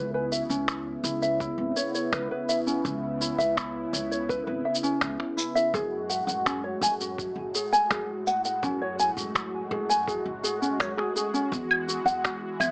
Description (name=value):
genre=folktronica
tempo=83 BPM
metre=4/4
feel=straight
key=C# minor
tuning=A4 = 442 Hz
part: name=warm analog pad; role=sustained chords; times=0.0-12.7 s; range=A2 to F#4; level=-32 LUFS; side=equal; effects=chorus
part: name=ukulele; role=arpeggios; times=0.0-12.7 s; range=C#4 to G#5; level=-27 LUFS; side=equal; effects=tape echo, plate reverb
part: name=upright bass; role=bass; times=0.0-12.7 s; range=F#1 to F#2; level=-36 LUFS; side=equal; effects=none
part: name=electronic shaker, finger snaps and claves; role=drums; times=0.3-12.7 s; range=none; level=-28 LUFS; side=equal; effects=none
part: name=electronic kick drum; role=drums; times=0.7-12.4 s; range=none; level=-41 LUFS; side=equal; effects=none
room=moderate small room reverb, RT60 0.5 s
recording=small speaker sound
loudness=-25 LUFS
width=side -34 dB against mid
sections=0.0-12.7 A section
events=none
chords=0.0 C#m7; 5.7 F#madd9; 11.5 Eadd9